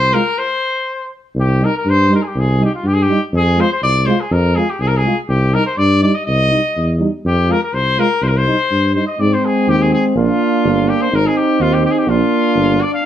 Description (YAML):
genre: balkan folk, Balkan brass band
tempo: 123 BPM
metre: 2/4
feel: straight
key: C minor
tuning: A4 = 440 Hz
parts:
  - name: clear trumpet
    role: melody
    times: 0.0-13.1 s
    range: F4 to F5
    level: -17 LUFS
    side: left 2 dB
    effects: plate reverb
  - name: warm tuba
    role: bass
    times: 0.0-12.8 s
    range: G1 to Ab2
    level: -16 LUFS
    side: equal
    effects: none
  - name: clear euphonium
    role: accompaniment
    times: 0.1-13.1 s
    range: C4 to F4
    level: -20 LUFS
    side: left 2 dB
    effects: none
  - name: mellow trombone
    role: accompaniment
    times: 0.1-13.1 s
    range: G3 to C4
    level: -19 LUFS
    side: right 5 dB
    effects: none
room: moderate studio reverb, RT60 0.7 s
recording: heard from further back in the room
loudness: -13 LUFS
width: side -10 dB against mid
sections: 0.0-1.4 A section; 1.4-9.2 A section; 9.2-13.1 B section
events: speeding up 0.0-13.1; stop 0.4-1.4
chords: 0.4 N.C.; 1.4 Cm; 3.3 Fm; 5.3 Cm; 7.2 Fm; 8.2 Cm; 9.2 Ab; 10.2 Bb; 11.1 Ab; 12.1 Bb